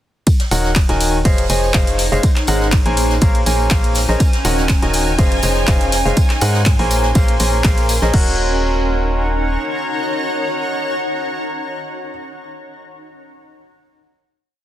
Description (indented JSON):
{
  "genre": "piano house",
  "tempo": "122 BPM",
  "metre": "4/4",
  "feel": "swing 53% on 16ths",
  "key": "Eb dorian",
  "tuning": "A4 = 435 Hz",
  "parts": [
    { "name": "electronic kick drum", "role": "drums", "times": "0.3-8.2 s", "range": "none", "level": "-14 LUFS", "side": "equal", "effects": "overdrive" },
    { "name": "jazz brush drum kit", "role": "drums", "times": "0.3-8.1 s", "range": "hi-hat, snare drum, tambourine", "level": "-29 LUFS", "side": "right 2 dB", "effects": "sidechain pumping on hats, high-pass filter on hats, high-pass filter on snare, sidechain pumping on perc, high-pass filter on perc, high-pass filter on room" },
    { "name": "punchy analog drum machine", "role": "drums", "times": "0.3-8.2 s", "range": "crash cymbal, handclaps, hi-hat, ride cymbal", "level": "-23 LUFS", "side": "left 1 dB", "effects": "overdrive" },
    { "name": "tambourine", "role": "percussion", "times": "0.3-8.1 s", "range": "none", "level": "-31 LUFS", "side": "right 3 dB", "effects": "none" },
    { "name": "granular cloud pad", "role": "texture", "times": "1.4-12.3 s", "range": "Db4 to C6", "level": "-23 LUFS", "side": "equal", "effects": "built-in reverb, sidechain pumping" },
    { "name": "bright baby grand piano", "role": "riff", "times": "0.5-12.1 s", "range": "Eb3 to Ab5", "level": "-20 LUFS", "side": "equal", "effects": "sidechain pumping, dub echo" },
    { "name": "organ-like FM bass", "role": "bass", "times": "0.5-9.6 s", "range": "Eb1 to Ab2", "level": "-19 LUFS", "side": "equal", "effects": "sidechain pumping" },
    { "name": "dark studio violin section", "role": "sustained chords", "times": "4.2-8.1 s", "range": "Ab5", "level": "-26 LUFS", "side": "right 2 dB", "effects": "sidechain pumping" }
  ],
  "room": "light reverb, small room ambience",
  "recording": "dense, heavily limited modern master",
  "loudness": "-14 LUFS",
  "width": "side -12 dB against mid",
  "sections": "0.3-8.1 drop; 8.1-12.1 final chord",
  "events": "drop 0.3-8.1",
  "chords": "0.3 Ebm7; 1.3 Dbmaj9/F; 2.2 Ab9; 3.0 Bbm9; 4.2 Ebm7; 5.2 Dbmaj9/F; 6.2 Ab9; 6.9 Bbm9; 8.1 Ebm7"
}